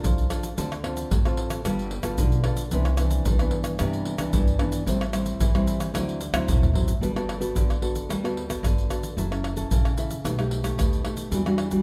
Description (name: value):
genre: samba and choro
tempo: 112 BPM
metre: 4/4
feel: straight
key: G major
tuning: A4 = 440 Hz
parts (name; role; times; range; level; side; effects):
- nylon-string guitar; accompaniment; 0.0-11.8 s; G2 to A4; -30 LUFS; equal; none
- upright bass; bass; 0.0-11.8 s; F#1 to G2; -31 LUFS; equal; none
- egg shaker, surdo, pandeiro and tamborim; percussion; 0.0-11.8 s; none; -28 LUFS; equal; none
room: moderate large studio reverb, RT60 1.3 s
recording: none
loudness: -25 LUFS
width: mono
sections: 0.0-7.0 A section; 7.0-11.8 B section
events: drum fill 6.3-7.0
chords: 0.0 Bbmaj7 (rootless); 0.6 Dm7; 1.6 G9; 2.7 Cmaj9; 4.9 Am7; 5.9 D9; 7.0 Gmaj9; 9.2 F#m7; 10.2 B7alt; 11.3 Em9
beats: 0.04 | 0.57 1.11 1.65 2.19 | 2.72 3.26 3.80 4.33 | 4.87 5.41 5.94 6.48 | 7.02 7.55 8.09 8.63 | 9.17 9.71 10.24 10.78 | 11.32